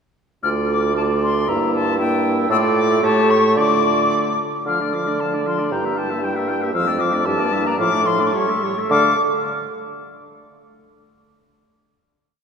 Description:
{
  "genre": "quick classical-period movement for wind quintet",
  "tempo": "103-118 BPM",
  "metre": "2/4",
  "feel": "rubato",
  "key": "D minor",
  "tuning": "A4 = 439 Hz",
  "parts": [
    { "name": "silver concert flute", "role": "melody", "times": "0.4-9.2 s", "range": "G5 to F6", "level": "-21 LUFS", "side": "left 4 dB", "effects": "none" },
    { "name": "warm oboe", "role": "second line", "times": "0.4-9.1 s", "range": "C#5 to G5", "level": "-25 LUFS", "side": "left 2 dB", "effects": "none" },
    { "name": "mellow French horn", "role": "accompaniment", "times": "0.4-9.1 s", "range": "F3 to Bb3", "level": "-25 LUFS", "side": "right 1 dB", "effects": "none" },
    { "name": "warm clarinet", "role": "accompaniment", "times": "0.4-9.2 s", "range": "D4 to A4", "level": "-26 LUFS", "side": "right 6 dB", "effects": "none" },
    { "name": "warm bassoon", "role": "bass", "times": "0.4-9.1 s", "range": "D2 to D3", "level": "-22 LUFS", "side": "right 2 dB", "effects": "none" }
  ],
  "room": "wet church reverb, RT60 3.0 s",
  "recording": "recorded in a church or concert hall",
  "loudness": "-16 LUFS",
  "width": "side -6 dB against mid",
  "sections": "0.4-4.7 A section; 4.7-8.9 A section; 8.9-10.0 final chord",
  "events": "none",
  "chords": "0.4 Dm; 1.5 Edim/G; 2.5 Dm/A; 3.0 A7; 3.6 Dm; 5.7 Edim/G; 6.8 Dm/F; 7.3 Em7b5/G; 7.8 Dm/A; 8.3 A7; 8.9 Dm"
}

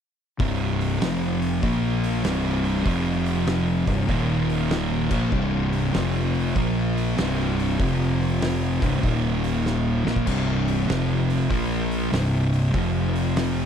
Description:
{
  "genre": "stoner and doom metal",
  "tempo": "97 BPM",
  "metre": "4/4",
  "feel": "swing 66% on 8ths",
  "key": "C minor",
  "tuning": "A4 = 440 Hz",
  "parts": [
    { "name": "string machine, cellos", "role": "sustained chords", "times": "0.4-13.7 s", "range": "C3 to C5", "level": "-36 LUFS", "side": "equal", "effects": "none" },
    { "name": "thick fuzz guitar", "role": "riff", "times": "0.4-13.7 s", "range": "C2 to Bb3", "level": "-25 LUFS", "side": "left 8 dB", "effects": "distortion" },
    { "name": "thick fuzz guitar", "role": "riff", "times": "0.4-13.7 s", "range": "C2 to Bb3", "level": "-26 LUFS", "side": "right 9 dB", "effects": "distortion" },
    { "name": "fuzz fingered electric bass", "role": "bass", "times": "0.4-13.7 s", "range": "C1 to Bb1", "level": "-28 LUFS", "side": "equal", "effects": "overdrive" },
    { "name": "oversized low-tuned drum kit", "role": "drums", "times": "0.4-13.6 s", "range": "crash cymbal, hi-hat, kick drum, snare drum", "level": "-30 LUFS", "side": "equal", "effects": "none" }
  ],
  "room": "little or no reverb",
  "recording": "dry, close 1970s-style studio recording",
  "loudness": "-21 LUFS",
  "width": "side -8 dB against mid",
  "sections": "0.4-13.7 A section",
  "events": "drum fill 9.6-10.3",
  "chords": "0.4 C5; 1.0 F5; 1.6 Bb5; 2.2 C5; 2.9 F5; 3.8 C5; 4.1 Eb5; 5.0 C5; 5.9 F5; 6.6 Bb5; 7.2 C5; 7.8 F5; 8.7 C5; 9.0 Eb5; 10.0 C5; 10.9 F5; 11.5 Bb5; 12.1 C5; 12.7 F5"
}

